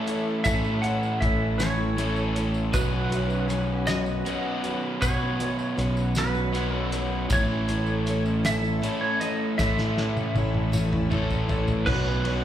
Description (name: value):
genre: folk rock and heartland rock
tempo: 53 BPM (dotted quarters)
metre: 6/8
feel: straight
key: unclear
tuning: A4 = 440 Hz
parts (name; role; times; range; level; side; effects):
- clean lap steel guitar; melody; 0.0-12.4 s; B4 to F#5; -30 LUFS; right 2 dB; slapback echo
- picked steel-string acoustic guitar; accompaniment; 0.0-12.4 s; A2 to B4; -33 LUFS; left 5 dB; none
- clear studio string section; sustained chords; 0.0-12.4 s; A3 to C#5; -38 LUFS; equal; none
- crunchy overdriven guitar; riff; 0.0-12.4 s; A2 to A4; -28 LUFS; right 1 dB; none
- dark baby grand piano; accompaniment; 0.1-12.4 s; C#4 to B5; -39 LUFS; right 1 dB; none
- cloth-damped thuddy drum kit; drums; 0.1-12.4 s; crash cymbal, hi-hat, kick drum, ride cymbal, snare drum, toms; -30 LUFS; equal; none
- tambourine; percussion; 0.1-11.8 s; none; -42 LUFS; right 3 dB; none
- fingered electric bass; bass; 0.5-12.4 s; A1 to B2; -27 LUFS; equal; none
room: light reverb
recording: live gig heard through the venue's PA, recital hall reverb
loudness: -23 LUFS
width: side -11 dB against mid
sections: 0.0-11.9 A section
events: drum fill 9.6-11.9; grand piano fill 10.7-11.9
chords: 0.0 A; 2.7 Bsus2; 7.3 A; 11.9 Bsus2